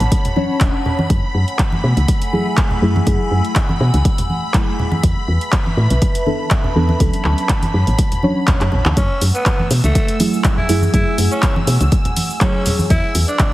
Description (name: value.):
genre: deep house.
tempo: 122 BPM.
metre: 4/4.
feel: swing 54% on 16ths.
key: F# minor.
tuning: A4 = 440 Hz.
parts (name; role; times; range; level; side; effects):
dark analog pad; sustained chords; 0.0-13.5 s; A3 to E6; -26 LUFS; equal; chorus, phaser, sidechain pumping.
deep mellow chord stab; stabs; 0.0-12.9 s; E3 to C#5; -21 LUFS; equal; chorus, phaser, sidechain pumping, dub echo.
woody FM bass; bass; 0.0-13.2 s; D1 to B2; -16 LUFS; equal; sidechain pumping.
deep house drum kit; drums; 0.0-13.5 s; handclaps, hi-hat, shaker; -23 LUFS; equal; overdrive, small room reverb.
string machine, violins; texture; 0.0-13.5 s; B5 to E6; -29 LUFS; equal; ensemble chorus.
electronic kick drum; drums; 0.1-13.5 s; none; -17 LUFS; equal; small room reverb.
congas; percussion; 0.3-12.9 s; none; -23 LUFS; right 1 dB; none.
growling tenor saxophone; melody; 9.0-13.5 s; A3 to E4; -23 LUFS; equal; tape echo.
room: light reverb.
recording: heavily compressed radio sound, multiband compression.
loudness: -14 LUFS.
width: side -16 dB against mid.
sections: 0.0-13.5 A section.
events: drum fill 8.6-9.0.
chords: 0.0 Dmaj7; 1.1 F#m9; 5.0 E7sus4; 7.0 Dmaj7; 9.0 F#m9; 12.9 E7sus4.